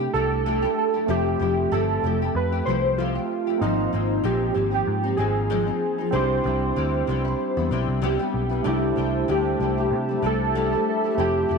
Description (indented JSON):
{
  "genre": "indie pop, bedroom pop",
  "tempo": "95 BPM",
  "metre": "4/4",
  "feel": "swing 55% on 16ths",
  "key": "C major",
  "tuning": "A4 = 440 Hz",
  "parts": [
    { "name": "warbly lo-fi synth keys", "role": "melody", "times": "0.0-11.6 s", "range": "Eb4 to C5", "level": "-25 LUFS", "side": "right 2 dB", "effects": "wide subtle chorus, slapback echo" },
    { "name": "barky tine electric piano", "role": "accompaniment", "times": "0.0-11.6 s", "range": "A3 to E5", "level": "-29 LUFS", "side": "right 9 dB", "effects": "overdrive" },
    { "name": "nylon-string guitar", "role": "accompaniment", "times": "0.0-11.6 s", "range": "Ab2 to G4", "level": "-28 LUFS", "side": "left 12 dB", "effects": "analog chorus, vibrato effect" },
    { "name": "vintage muted picked electric bass", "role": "bass", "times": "0.0-11.6 s", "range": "F1 to C3", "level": "-26 LUFS", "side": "left 1 dB", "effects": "none" },
    { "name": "hollow soft pad", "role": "sustained chords", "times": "8.6-11.6 s", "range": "G4 to A5", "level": "-28 LUFS", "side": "left 1 dB", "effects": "chorus" }
  ],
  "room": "wet echo chamber reverb, RT60 1.9 s",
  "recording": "1960s-style stereo with parts hard left and right",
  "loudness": "-21 LUFS",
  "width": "side -4 dB against mid",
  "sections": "0.0-8.7 A section; 8.7-11.6 A section",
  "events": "none",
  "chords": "0.0 C6; 1.1 Fmaj9; 3.6 Ab6; 6.1 Cmaj7; 8.7 C6"
}